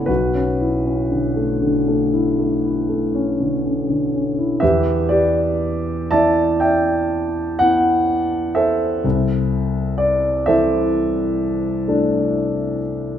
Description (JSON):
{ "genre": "classical, impressionist solo piano", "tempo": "39-44 BPM (dotted quarters)", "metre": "9/8", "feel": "rubato", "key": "E minor from 4.6 s", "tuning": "A4 = 440 Hz", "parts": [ { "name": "warm concert grand piano", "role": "solo", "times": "0.0-13.2 s", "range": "B1 to A5", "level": "-16 LUFS", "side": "equal", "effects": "none" } ], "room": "moderate recital hall reverb, RT60 1.5 s", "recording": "none", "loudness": "-16 LUFS", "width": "side -9 dB against mid", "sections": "0.0-4.6 A section; 4.6-13.2 B section", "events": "none", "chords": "0.1 Bm11; 4.6 Em7; 9.0 C69", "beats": "| 0.08 1.62 3.12 | 4.61 6.11 7.60 | 9.04 10.45 11.87" }